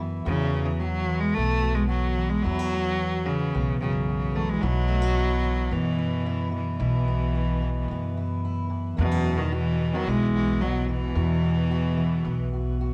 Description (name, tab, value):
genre	acoustic folk duo or small band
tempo	110 BPM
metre	4/4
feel	straight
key	unclear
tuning	A4 = 440 Hz
part	fingerpicked steel-string acoustic guitar	accompaniment	0.0-12.9 s	E2 to F#4	-33 LUFS	equal	none
part	upright bass	bass	0.0-12.9 s	B1 to F#2	-30 LUFS	equal	none
part	bright cello	melody	0.3-12.9 s	B2 to A3	-29 LUFS	equal	none
part	warm cello	second line	3.8-12.9 s	F#2 to F#3	-35 LUFS	equal	none
room	light reverb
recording	worn, warbling old tape, cassette tape, warbly pitch drift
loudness	-25 LUFS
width	mono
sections	0.0-12.9 A section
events	none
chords	0.0 Bsus4